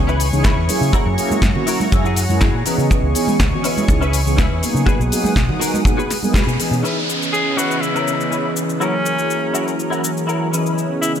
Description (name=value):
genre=nu-disco, nu disco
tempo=122 BPM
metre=4/4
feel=straight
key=C# dorian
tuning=A4 = 439 Hz
part: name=mellow synth brass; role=accompaniment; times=0.0-11.2 s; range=E3 to D#5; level=-22 LUFS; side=right 1 dB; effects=chorus, vintage 12-bit sampler grit, sidechain pumping, tape echo
part: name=lush unison pad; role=sustained chords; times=0.0-11.2 s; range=C#3 to D#6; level=-25 LUFS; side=equal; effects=chorus, sidechain pumping
part: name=picked electric bass with an envelope filter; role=bass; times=0.0-6.8 s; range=B1 to C#3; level=-19 LUFS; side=equal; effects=none
part: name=direct-recorded clean electric guitar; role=riff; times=0.1-11.1 s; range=C#4 to A#5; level=-26 LUFS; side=left 3 dB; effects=ensemble chorus, low-pass filter, tape echo
part: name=house drum kit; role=drums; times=0.1-11.2 s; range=hi-hat, shaker, snare drum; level=-25 LUFS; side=left 1 dB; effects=studio reverb
part: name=kick drum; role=drums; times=0.4-6.4 s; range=none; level=-18 LUFS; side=equal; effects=studio reverb
part: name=congas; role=percussion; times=1.3-6.3 s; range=none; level=-24 LUFS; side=right 3 dB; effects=none
part: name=downlifter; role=sound effects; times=6.8-10.8 s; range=none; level=-26 LUFS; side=equal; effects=none
part: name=bright tenor saxophone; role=melody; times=7.3-11.1 s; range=C#4 to G#4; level=-22 LUFS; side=left 1 dB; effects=digital delay
room=light reverb, studio ambience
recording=none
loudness=-15 LUFS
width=side -9 dB against mid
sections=0.0-6.8 A section; 6.8-11.2 B section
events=clean electric guitar fill 1.4-2.9; band accent 6.3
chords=0.0 C#m7; 0.9 F#7; 2.7 C#m7; 4.9 G#m7/B; 6.8 C#m7; 8.8 F#7; 10.5 C#m7